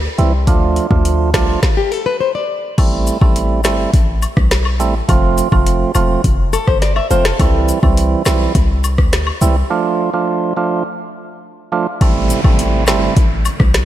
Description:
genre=dancehall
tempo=104 BPM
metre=4/4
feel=straight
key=A minor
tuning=A4 = 443 Hz
part: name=hard-hitting 808-style bass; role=bass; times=0.0-13.8 s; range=E1 to D2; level=-16 LUFS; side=equal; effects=none
part: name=percussive tonewheel organ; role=accompaniment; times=0.2-13.1 s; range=E3 to F4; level=-18 LUFS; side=right 5 dB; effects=overdrive
part: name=afro-pop drum kit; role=drums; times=0.2-13.8 s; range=crash cymbal, hi-hat, kick drum, rim click, snare drum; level=-16 LUFS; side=equal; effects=overdrive
part: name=flamenco guitar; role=arpeggios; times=1.8-2.8, 6.5-7.5 s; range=G4 to E5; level=-19 LUFS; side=left 6 dB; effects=none
part: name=woodblock and cabasa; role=percussion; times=2.8-13.6 s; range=none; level=-27 LUFS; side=left 6 dB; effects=none
part: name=downlifter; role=sound effects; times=12.0-13.8 s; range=none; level=-23 LUFS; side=right 2 dB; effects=none
room=light reverb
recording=none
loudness=-12 LUFS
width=side -12 dB against mid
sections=0.0-2.8 A section; 2.8-12.0 B section; 12.0-13.8 C section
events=stop 1.6-2.8; break 9.7-12.0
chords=0.5 Dm; 2.8 Am7; 5.1 F; 7.4 C; 9.7 Dm; 12.0 Am7

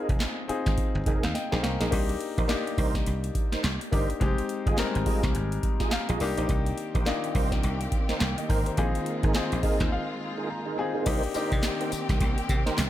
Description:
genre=R&B, new jack swing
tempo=105 BPM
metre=4/4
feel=swing 60% on 16ths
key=C minor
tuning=A4 = 440 Hz
part: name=clear grand piano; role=accompaniment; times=0.0-12.9 s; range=G3 to Bb5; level=-31 LUFS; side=left 4 dB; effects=none
part: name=tonewheel organ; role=stabs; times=0.0-12.8 s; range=Eb4 to Eb5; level=-35 LUFS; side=right 3 dB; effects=overdrive, chorus vibrato, slow rotary speaker, ping-pong delay
part: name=dry thumbed slap bass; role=bass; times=0.1-12.9 s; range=F1 to C3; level=-29 LUFS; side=equal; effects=none
part: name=booming analog drum machine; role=drums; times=0.1-12.9 s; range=crash cymbal, handclaps, hi-hat, kick drum, snare drum, tambourine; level=-28 LUFS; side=equal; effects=gated reverb
part: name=warm studio string section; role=sustained chords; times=6.5-12.9 s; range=Eb3 to G4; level=-34 LUFS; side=right 1 dB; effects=none
room=digital ambience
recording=none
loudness=-24 LUFS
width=side -13 dB against mid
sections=0.0-1.9 A section; 1.9-11.1 B section; 11.1-12.9 C section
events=grand piano fill 1.1-1.9, 5.6-6.5, 9.3-11.1; drum fill 1.3-1.9; break 9.9-11.1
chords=0.0 Bb7sus4; 1.9 Cm7; 4.2 Fm7; 6.2 Cm7; 8.8 Bb7sus4; 11.1 Cm7

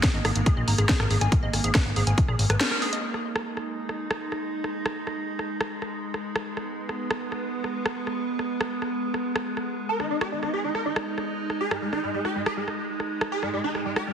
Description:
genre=psychedelic trance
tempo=140 BPM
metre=4/4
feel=straight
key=G# harmonic minor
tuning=A4 = 438 Hz
part: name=evolving wavetable pad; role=sustained chords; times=0.0-14.1 s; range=G#3 to G4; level=-30 LUFS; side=right 2 dB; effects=chorus, built-in reverb, vintage 12-bit sampler grit, sidechain pumping
part: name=woody wave-folded pluck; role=riff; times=0.0-3.0 s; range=G#4 to A#5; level=-32 LUFS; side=equal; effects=chorus, auto-pan, sidechain pumping, ping-pong delay
part: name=drum and bass drum kit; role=drums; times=0.0-14.0 s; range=hi-hat, rim click, snare drum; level=-30 LUFS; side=equal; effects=studio reverb
part: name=electronic kick drum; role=drums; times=0.0-2.3 s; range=none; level=-22 LUFS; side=equal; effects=studio reverb
part: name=fat analog bass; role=bass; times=0.1-2.6 s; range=G#1 to A#1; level=-24 LUFS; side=equal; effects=none
part: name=swarming rave lead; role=melody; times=9.9-14.1 s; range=G#3 to A#4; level=-28 LUFS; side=equal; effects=chorus, phaser, sidechain pumping, ping-pong delay
part: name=riser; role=sound effects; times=13.7-14.1 s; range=none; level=barely audible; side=none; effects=none
room=moderate lush hall reverb, RT60 2.0 s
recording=heavily compressed radio sound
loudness=-24 LUFS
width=side -8 dB against mid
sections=0.0-3.0 A section; 3.0-14.1 B section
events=break 2.6-3.0; band accent 2.6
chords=0.0 G#5

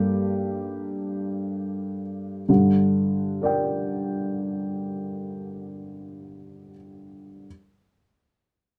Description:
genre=neoclassical minimalist piano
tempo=60-65 BPM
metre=3/4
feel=rubato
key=G minor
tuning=A4 = 440 Hz
part: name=dark upright piano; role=solo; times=0.0-7.5 s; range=G2 to G5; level=-26 LUFS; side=equal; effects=none
room=moderate studio reverb, RT60 0.5 s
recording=none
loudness=-26 LUFS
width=mono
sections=0.0-2.5 A section; 2.5-5.3 B section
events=slowing down 0.0-2.5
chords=0.0 Gmadd9; 2.5 Gm

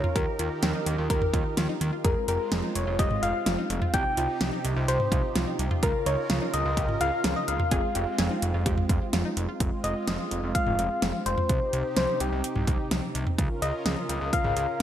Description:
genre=synth-pop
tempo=127 BPM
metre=4/4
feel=straight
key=F minor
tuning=A4 = 438 Hz
part: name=soft struck synth lead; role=melody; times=0.0-14.8 s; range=G4 to G5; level=-29 LUFS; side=left 2 dB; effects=chorus
part: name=brassy analog pad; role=sustained chords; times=0.0-14.8 s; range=C3 to Bb4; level=-33 LUFS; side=right 2 dB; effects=chorus
part: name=analog pluck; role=arpeggios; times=0.0-9.6 s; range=Eb4 to Ab4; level=-36 LUFS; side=equal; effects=chorus, phaser, digital delay
part: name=fat analog bass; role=bass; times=0.0-14.8 s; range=F1 to Eb2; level=-30 LUFS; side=equal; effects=none
part: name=pop drum kit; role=drums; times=0.0-14.7 s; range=hi-hat, kick drum, snare drum, toms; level=-28 LUFS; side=equal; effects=overdrive, gated reverb
room=moderate plate reverb, RT60 1.8 s, digital ambience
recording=bright 1980s-style digital production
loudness=-24 LUFS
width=side -10 dB against mid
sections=0.0-9.6 A section; 9.6-14.8 B section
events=none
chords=0.2 Eb; 2.0 Fm; 3.9 Cm; 5.8 Bbm/Db; 7.7 Fm; 11.5 Cm; 13.4 Bbm/Db

